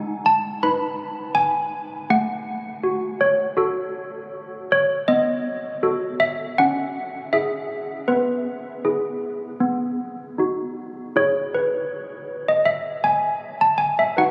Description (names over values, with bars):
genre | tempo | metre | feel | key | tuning
classical, tune for handbells | 80 BPM | 4/4 | straight | E major | A4 = 441 Hz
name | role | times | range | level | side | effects
malleted handbells | solo | 0.0-14.3 s | G#3 to B5 | -23 LUFS | equal | none
room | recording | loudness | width
wet cathedral reverb, RT60 5.0 s | recorded on a phone in the room, club reverb, compression | -22 LUFS | mono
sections
0.0-11.2 A section; 11.2-14.3 B section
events
none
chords
0.0 G#m; 2.1 F#m/A; 5.1 B7; 6.6 C#m; 8.1 E/B; 9.6 B; 11.2 E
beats
0.63 1.37 | 2.11 2.85 3.59 4.34 | 5.08 5.83 6.58 7.32 | 8.08 8.85 9.62 10.39 | 11.16 11.91 12.66 13.40 | 14.14